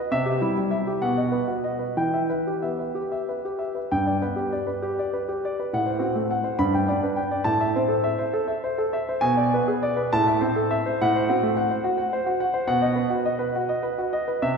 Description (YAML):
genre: classical, baroque-style suite movement for grand piano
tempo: 60-71 BPM (dotted quarters)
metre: 6/8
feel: rubato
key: E minor, G major from 3.9 s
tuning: A4 = 438 Hz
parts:
  - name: warm grand piano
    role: solo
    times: 0.0-14.6 s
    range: G2 to B5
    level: -22 LUFS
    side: equal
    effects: none
room: wet concert hall reverb, RT60 2.2 s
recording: recorded in a church or concert hall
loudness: -22 LUFS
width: side -5 dB against mid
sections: 0.0-3.9 A section; 3.9-14.6 A section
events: none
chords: 0.1 C; 1.0 B; 2.0 Em; 3.9 G; 5.7 F#dim/A; 6.6 G; 7.5 Am; 9.2 G#dim/B; 10.1 Am; 11.0 F#dim/A; 12.7 B